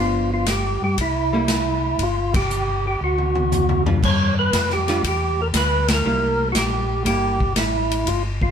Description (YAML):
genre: soul jazz organ trio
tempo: 118 BPM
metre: 4/4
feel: swing 69% on 8ths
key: unclear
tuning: A4 = 436 Hz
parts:
  - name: percussive tonewheel organ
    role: melody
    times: 0.0-8.5 s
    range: E4 to C#5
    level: -22 LUFS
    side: equal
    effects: slow rotary speaker, overdrive
  - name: archtop guitar, miked and amplified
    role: accompaniment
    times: 0.0-7.4 s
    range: F3 to B4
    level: -25 LUFS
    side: right 3 dB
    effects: none
  - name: mellow tonewheel organ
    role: bass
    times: 0.0-8.5 s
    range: G1 to G2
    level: -24 LUFS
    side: equal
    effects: chorus vibrato, slow rotary speaker
  - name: swinging big-band drum kit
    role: drums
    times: 0.5-8.5 s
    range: crash cymbal, hi-hat, kick drum, ride cymbal, snare drum, toms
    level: -23 LUFS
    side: left 1 dB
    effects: none
room: moderate studio reverb, RT60 0.6 s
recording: band playing live in one room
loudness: -18 LUFS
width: side -8 dB against mid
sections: 0.0-4.0 A section; 4.0-8.5 A section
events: band accent 2.2, 5.8; drum fill 3.0-4.0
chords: 0.0 G7; 1.0 C7; 2.0 Fsus2/G; 3.0 D; 4.0 G7; 6.0 C7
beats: 0.47 0.98 1.48 | 1.99 2.50 3.00 3.51 | 4.01 4.52 5.03 5.53 | 6.04 6.54 7.05 7.56 | 8.06